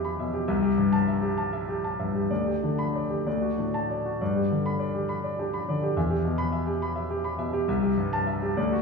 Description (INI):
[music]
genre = classical, romantic character piece for solo piano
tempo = 61-71 BPM (dotted quarters)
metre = 6/8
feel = rubato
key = G major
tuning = A4 = 444 Hz
[part]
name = clear concert grand piano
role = solo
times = 0.0-8.8 s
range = C2 to B5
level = -24 LUFS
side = left 1 dB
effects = none
[sound]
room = wet recital hall reverb, RT60 1.4 s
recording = heard from further back in the room, studio ambience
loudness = -24 LUFS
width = side -4 dB against mid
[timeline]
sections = 0.0-8.8 A section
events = none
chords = 0.5 Am7/C; 2.3 G/D; 3.3 D; 4.2 G; 6.0 Em; 7.7 Am7/C